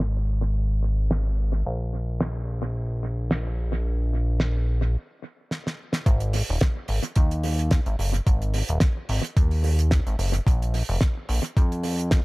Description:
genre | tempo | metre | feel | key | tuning
nu-disco, nu disco | 109 BPM | 4/4 | swing 55% on 16ths | unclear | A4 = 439 Hz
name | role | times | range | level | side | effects
chorused synth bass | bass | 0.0-12.2 s | Eb1 to F2 | -24 LUFS | equal | none
damped 70s drum kit | drums | 0.0-12.2 s | hi-hat, snare drum | -28 LUFS | right 1 dB | small room ambience, analog delay
electronic kick drum | drums | 6.1-12.2 s | none | -20 LUFS | equal | small room ambience
room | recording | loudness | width
little or no reverb | echo-heavy mix, low-pass filter | -22 LUFS | side -22 dB against mid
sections
0.0-6.1 A section; 6.1-12.2 B section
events
filter sweep 0.0-6.1; stop 5.0-6.1; drum fill 5.5-6.1; drop 6.1-12.2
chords
none

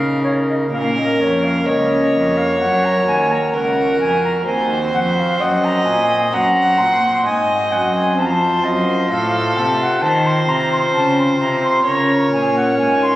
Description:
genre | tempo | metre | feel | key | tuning
classical, baroque-style sonata movement with continuo | 65 BPM | 4/4 | straight | Bb minor | A4 = 440 Hz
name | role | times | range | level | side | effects
concert flute | melody | 0.0-13.2 s | Db5 to C6 | -20 LUFS | left 1 dB | none
rich violin | second line | 0.0-13.2 s | A4 to Gb5 | -19 LUFS | right 1 dB | none
pipe organ, foundations | accompaniment | 0.0-13.2 s | Db2 to C5 | -20 LUFS | equal | none
rich cello | bass | 0.0-13.2 s | Db2 to Eb3 | -22 LUFS | equal | none
room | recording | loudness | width
wet concert hall reverb, RT60 2.2 s | recorded on a phone in the room, club reverb, compression | -14 LUFS | side -15 dB against mid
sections
0.7-13.2 A section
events
none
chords
0.0 Eb5; 0.7 Bbm; 2.6 Gb; 4.5 Cdim/Eb; 8.2 F; 10.0 F5; 11.9 Bbm

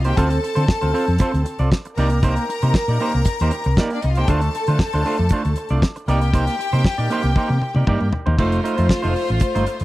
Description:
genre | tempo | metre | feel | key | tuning
disco | 117 BPM | 4/4 | straight | C dorian | A4 = 443 Hz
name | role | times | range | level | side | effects
rich chamber string section | second line | 0.0-9.8 s | A3 to Bb5 | -25 LUFS | left 2 dB | none
semi-hollow electric guitar | accompaniment | 0.0-9.8 s | A3 to D5 | -24 LUFS | right 3 dB | spring reverb
hollow-body short-scale fingered electric bass | bass | 0.0-9.8 s | F1 to D3 | -19 LUFS | equal | none
damped 70s drum kit | drums | 0.0-9.8 s | crash cymbal, hi-hat, kick drum, snare drum, toms | -19 LUFS | equal | none
room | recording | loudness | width
little or no reverb | dry, close 1970s-style studio recording | -17 LUFS | side -17 dB against mid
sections
0.0-8.4 A section; 8.4-9.8 B section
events
drum fill 7.4-8.4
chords
0.2 Dm7; 2.0 Cm7; 4.3 Dm7; 6.1 Cm7; 8.4 F7

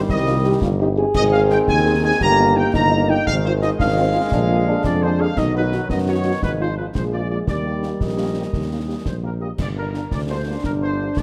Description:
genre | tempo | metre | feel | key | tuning
military-style march for wind band | 114 BPM (dotted quarters) | 6/8 | straight | Eb major | A4 = 440 Hz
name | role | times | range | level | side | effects
clear trombone section | sustained chords | 0.0-11.2 s | D3 to D4 | -28 LUFS | equal | none
dark trumpet section | melody | 0.1-11.2 s | Bb4 to Bb5 | -26 LUFS | equal | none
clear euphonium | second line | 0.1-9.3 s | B3 to Ab4 | -25 LUFS | equal | none
mellow tuba | bass | 0.1-11.2 s | G1 to F#2 | -24 LUFS | equal | none
concert snare drum, concert bass drum and clash cymbals | drums | 0.1-11.2 s | none | -30 LUFS | equal | none
mellow French horn section | accompaniment | 0.3-11.1 s | F#3 to Ab4 | -30 LUFS | equal | none
room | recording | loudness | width
moderate large studio reverb, RT60 1.3 s | none | -19 LUFS | mono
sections
0.0-9.6 A section; 9.6-11.2 A section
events
none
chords
0.0 Cm; 1.2 Ab; 2.2 Eb/G; 3.3 Fm7/Ab; 4.3 Bb7; 5.4 B; 6.4 Ab5; 7.0 Bb5; 7.5 Eb; 9.6 Gm

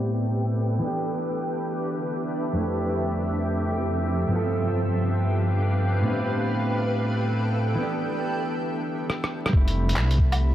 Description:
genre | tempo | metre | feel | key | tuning
future garage | free time | none | none | A minor | A4 = 440 Hz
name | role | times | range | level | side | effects
mellow electric guitar | accompaniment | 0.0-10.5 s | F2 to A4 | -26 LUFS | equal | sidechain pumping, tape echo
granular cloud pad | sustained chords | 0.0-10.5 s | F3 to A5 | -28 LUFS | equal | built-in reverb, sidechain pumping
backwards swelling texture | texture | 0.0-8.7 s | G4 to G5 | -37 LUFS | left 1 dB | built-in reverb
lo-fi sampler-style drum kit | drums | 9.1-10.4 s | handclaps, hi-hat, rim click, woodblock | -28 LUFS | equal | none
dark detuned saw bass | bass | 9.5-10.5 s | F1 to C2 | -22 LUFS | equal | sidechain pumping
electronic kick drum | drums | 9.5-10.3 s | none | -20 LUFS | equal | none
room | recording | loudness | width
moderate lush hall reverb, RT60 1.8 s, digital ambience | vinyl crackle, low-pass filter | -23 LUFS | side -12 dB against mid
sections
0.0-9.5 A section; 9.5-10.5 B section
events
filter sweep 0.0-9.5; drum fill 9.1-9.5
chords
0.0 Am9; 0.8 Em7; 2.6 Fmaj7; 4.3 G7; 6.1 Am9; 7.8 Em7; 9.5 Fmaj7

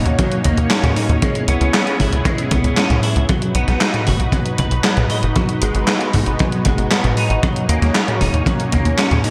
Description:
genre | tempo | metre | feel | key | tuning
synthwave | 116 BPM | 4/4 | straight | G# minor | A4 = 441 Hz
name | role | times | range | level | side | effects
lush unison pad | sustained chords | 0.0-9.3 s | G#3 to C#5 | -25 LUFS | equal | chorus, phaser, sidechain pumping
clean electric guitar | arpeggios | 0.0-9.3 s | F#3 to D#5 | -26 LUFS | equal | ensemble chorus, digital delay
tight sequencer bass | bass | 0.0-9.2 s | D#1 to G#2 | -20 LUFS | equal | none
gated 80s digital drum machine | drums | 0.1-9.3 s | handclaps, hi-hat, snare drum, toms | -21 LUFS | equal | gated reverb, gated reverb snare
kick drum | drums | 0.2-8.8 s | none | -22 LUFS | equal | none
room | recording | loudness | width
light reverb, digital ambience | bright 1980s-style digital production | -17 LUFS | mono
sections
0.0-9.3 A section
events
none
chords
0.0 D#m7; 1.2 C#m7; 3.3 B; 5.4 G#m7; 7.4 D#m7

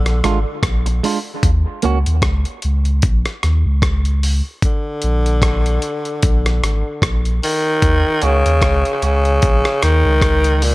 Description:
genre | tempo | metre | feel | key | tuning
dub reggae | 75 BPM | 4/4 | swing 56% on 16ths | Eb minor | A4 = 443 Hz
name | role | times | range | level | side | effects
growling tenor saxophone | melody | 0.0-10.7 s | Bb2 to Eb3 | -18 LUFS | equal | dub echo
warm sub bass | bass | 0.0-10.7 s | Ab1 to Eb2 | -16 LUFS | equal | none
dusty soul sampler-style drum kit | drums | 0.1-10.7 s | hi-hat, kick drum, rim click | -18 LUFS | equal | none
clean electric guitar | accompaniment | 0.2-2.0, 8.2-10.7 s | Ab3 to Gb4 | -24 LUFS | right 6 dB | high-pass filter, dub echo
congas | percussion | 7.8-10.7 s | none | barely audible | none | none
room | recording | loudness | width
digital ambience | none | -14 LUFS | side -20 dB against mid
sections
0.0-10.7 A section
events
break 0.0-7.8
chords
0.0 Bb7; 1.4 Eb7(no3); 4.6 Bb; 7.8 Ebm7

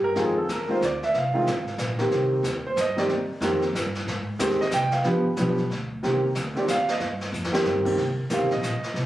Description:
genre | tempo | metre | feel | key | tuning
jazz piano trio | 184 BPM | 3/4 | swing 62% on 8ths | C minor | A4 = 440 Hz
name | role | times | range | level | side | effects
warm concert grand piano | melody | 0.0-8.9 s | Eb3 to G5 | -23 LUFS | right 1 dB | none
upright bass | bass | 0.0-9.1 s | G1 to Ab2 | -31 LUFS | equal | none
jazz brush drum kit | drums | 0.2-9.1 s | brushed snare drum, crash cymbal, hi-hat, kick drum, snare drum | -31 LUFS | left 1 dB | none
room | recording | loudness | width
light reverb | recorded on a phone in the room, club reverb, compression | -22 LUFS | side -14 dB against mid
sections
0.0-8.0 A section; 8.0-9.1 A section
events
grand piano solo 0.0-9.1; drum fill 7.3-7.7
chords
0.2 Fm7; 2.1 Cm7; 4.1 Abmaj7; 5.0 G7; 6.0 Cm7

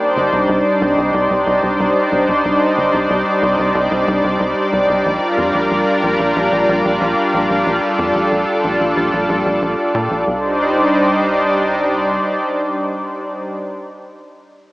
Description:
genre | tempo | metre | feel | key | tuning
synthwave | 92 BPM | 4/4 | straight | C dorian | A4 = 435 Hz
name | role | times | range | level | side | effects
lush unison pad | sustained chords | 0.0-13.6 s | G3 to D5 | -14 LUFS | equal | chorus
tight sequencer bass | bass | 0.2-12.2 s | G1 to Bb2 | -23 LUFS | equal | none
room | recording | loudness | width
wet lush hall reverb, RT60 2.8 s | small speaker sound | -14 LUFS | side -20 dB against mid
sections
0.0-10.3 A section; 10.3-12.9 B section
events
none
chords
0.0 Cmadd9; 5.1 Bb6; 10.3 Cmadd9

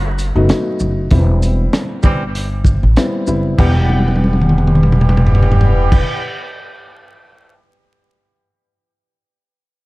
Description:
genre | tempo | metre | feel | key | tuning
hip hop, boom-bap hip-hop | 97 BPM | 4/4 | swing 55% on 16ths | E harmonic minor | A4 = 444 Hz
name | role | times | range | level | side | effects
dark upright piano | accompaniment | 0.0-6.0 s | F#3 to F#5 | -21 LUFS | left 1 dB | high-pass filter, low-pass filter
upright bass | bass | 0.0-6.0 s | E1 to A1 | -14 LUFS | equal | none
crunchy breakbeat drum kit | drums | 0.2-7.5 s | crash cymbal, hi-hat, kick drum, rim click, shaker, snare drum, toms | -15 LUFS | equal | none
mellow horn section | stabs | 2.0-6.0 s | E3 to G4 | -24 LUFS | right 1 dB | high-pass filter, low-pass filter, tape echo
flamenco guitar | melody | 3.6-6.0 s | G4 | -27 LUFS | equal | high-pass filter, low-pass filter, tape echo
room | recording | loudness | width
small room reverb | dark, warm production, vinyl crackle | -11 LUFS | side -20 dB against mid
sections
0.0-3.6 A section; 3.6-6.1 B section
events
drum fill 3.9-5.9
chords
0.0 B7; 1.1 Am7/E (rootless); 3.6 Emadd9

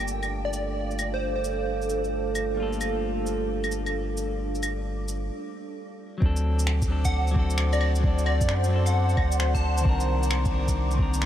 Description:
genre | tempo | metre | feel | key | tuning
future garage | 132 BPM | 4/4 | swing 65% on 16ths | G minor | A4 = 440 Hz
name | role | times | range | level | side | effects
clean electric guitar | accompaniment | 0.0-11.3 s | Eb3 to Bb4 | -34 LUFS | left 3 dB | vintage 12-bit sampler grit, sidechain pumping, diffuse ambient delay
deep dark ambient pad | sustained chords | 0.0-11.3 s | A4 to D6 | -31 LUFS | right 1 dB | chorus, built-in reverb, sidechain pumping
soft dub sub bass | bass | 0.0-11.3 s | G1 to F#2 | -26 LUFS | equal | sidechain pumping
electronic shaker, claves and finger snaps | drums | 0.0-11.3 s | none | -34 LUFS | equal | none
wind-like tuned noise texture | texture | 0.0-5.3 s | D4 to D6 | -40 LUFS | right 2 dB | built-in reverb, lush chorus
plucky unison lead | melody | 0.5-2.0, 7.0-9.9 s | C5 to A5 | -33 LUFS | right 1 dB | phaser, diffuse ambient delay
electronic kick drum | drums | 6.2-11.1 s | none | -25 LUFS | equal | overdrive
room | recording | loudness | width
moderate huge ambient reverb, RT60 7.6 s | dreamy mix soaked in reverb | -23 LUFS | side -11 dB against mid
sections
0.0-6.2 A section; 6.2-11.3 B section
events
break 5.3-6.2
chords
0.0 Gm9; 6.2 D7; 9.9 Cm9

